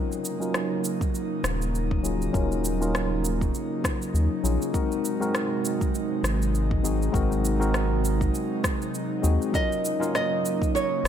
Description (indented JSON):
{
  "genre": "sunset chillout",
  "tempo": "100 BPM",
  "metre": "4/4",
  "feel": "swing 57% on 16ths",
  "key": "Eb dorian",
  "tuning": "A4 = 440 Hz",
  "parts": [
    { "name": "mellow tine electric piano", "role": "accompaniment", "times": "0.0-11.1 s", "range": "Gb3 to Bb4", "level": "-28 LUFS", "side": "moving between left 6 dB and right 8 dB", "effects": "overdrive, auto-pan, low-pass filter, tape echo, shimmer reverb" },
    { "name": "airy breathy pad", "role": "sustained chords", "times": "0.0-11.1 s", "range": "C3 to Eb4", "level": "-31 LUFS", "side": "left 2 dB", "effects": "chorus, shimmer reverb" },
    { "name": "electronic shaker and rim click", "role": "drums", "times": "0.1-11.1 s", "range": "none", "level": "-32 LUFS", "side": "equal", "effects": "small room ambience" },
    { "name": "electronic kick drum", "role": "drums", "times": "1.0-10.7 s", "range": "none", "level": "-28 LUFS", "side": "equal", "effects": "small room ambience" },
    { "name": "round analog bass", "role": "bass", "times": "1.4-11.1 s", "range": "Eb1 to Eb2", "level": "-26 LUFS", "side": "equal", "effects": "none" },
    { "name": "nylon-string guitar", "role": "melody", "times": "9.6-11.1 s", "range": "Db5 to Eb5", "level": "-26 LUFS", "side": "right 2 dB", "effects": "vintage 12-bit sampler grit, digital delay, shimmer reverb" }
  ],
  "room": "light reverb",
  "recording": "none",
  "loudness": "-23 LUFS",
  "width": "side -9 dB against mid",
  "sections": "0.0-11.1 A section",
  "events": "none",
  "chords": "0.0 Ebm7; 4.7 Ab7; 9.5 Ebm7"
}